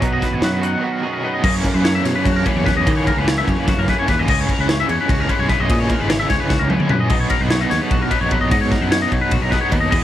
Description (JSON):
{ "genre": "math rock and midwest emo", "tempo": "297 BPM (eighths)", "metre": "7/8", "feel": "straight", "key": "B major", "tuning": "A4 = 441 Hz", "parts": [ { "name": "twelve-string electric guitar", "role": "accompaniment", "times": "0.0-2.9 s", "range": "F#2 to B4", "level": "-24 LUFS", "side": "right 6 dB", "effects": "none" }, { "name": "twangy electric guitar", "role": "arpeggios", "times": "0.0-10.0 s", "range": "F#4 to F#5", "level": "-22 LUFS", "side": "left 4 dB", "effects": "wide subtle chorus" }, { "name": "cranked stack guitar", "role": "riff", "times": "0.0-10.0 s", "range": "F#2 to F#4", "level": "-22 LUFS", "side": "right 1 dB", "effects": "overdrive, tremolo" }, { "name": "growling fingered electric bass", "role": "bass", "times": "0.0-10.0 s", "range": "G#1 to D#3", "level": "-22 LUFS", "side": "equal", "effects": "overdrive" }, { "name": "crisp fusion drum kit", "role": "drums", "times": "0.0-10.0 s", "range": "crash cymbal, hi-hat, kick drum, ride cymbal, snare drum, toms", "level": "-20 LUFS", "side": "equal", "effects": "cassette tape" } ], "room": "little or no reverb", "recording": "home recording on cassette", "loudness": "-15 LUFS", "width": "side -12 dB against mid", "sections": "0.0-1.4 A section; 1.4-10.0 B section", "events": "break 0.8-1.4; drum fill 6.5-7.1", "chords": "0.0 B6; 1.4 F#7sus4; 4.3 C#m11; 7.1 Bmaj7" }